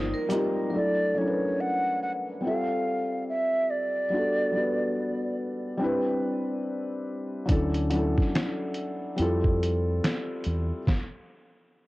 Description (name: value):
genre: lo-fi hip hop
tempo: 71 BPM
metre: 4/4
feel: swing 64% on 16ths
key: unclear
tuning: A4 = 440 Hz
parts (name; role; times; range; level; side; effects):
- vibraphone with hard mallets; second line; 0.0-0.7 s; Eb4 to C5; -33 LUFS; right 2 dB; low-pass filter, cassette tape, analog delay
- felt-muted upright piano; accompaniment; 0.0-10.9 s; F#3 to B4; -28 LUFS; left 1 dB; low-pass filter, cassette tape
- dark analog pad; sustained chords; 0.0-0.7 s; F3 to F4; -42 LUFS; left 2 dB; none
- deep dub fingered electric bass; bass; 0.0-0.1, 7.5-10.7 s; G1 to F2; -28 LUFS; equal; transformer saturation
- lo-fi sampler-style drum kit; drums; 0.3-0.6, 7.5-11.1 s; finger snaps, hi-hat, kick drum, snare drum; -27 LUFS; equal; cassette tape
- maracas; percussion; 0.3-0.6 s; none; -52 LUFS; right 4 dB; none
- breathy mellow concert flute; melody; 0.8-5.4 s; C#5 to F#5; -28 LUFS; right 1 dB; low-pass filter, cassette tape, analog delay
room: moderate spring reverb, RT60 2.7 s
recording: home recording on cassette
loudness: -25 LUFS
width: side -19 dB against mid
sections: 0.7-11.9 A section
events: stop 10.9-11.9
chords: 0.0 F9sus4; 0.7 Dmaj9; 2.4 Fadd9; 4.1 Gmaj9; 5.8 Cmaj9; 7.5 Dmaj9; 9.2 Fmaj9; 10.9 N.C.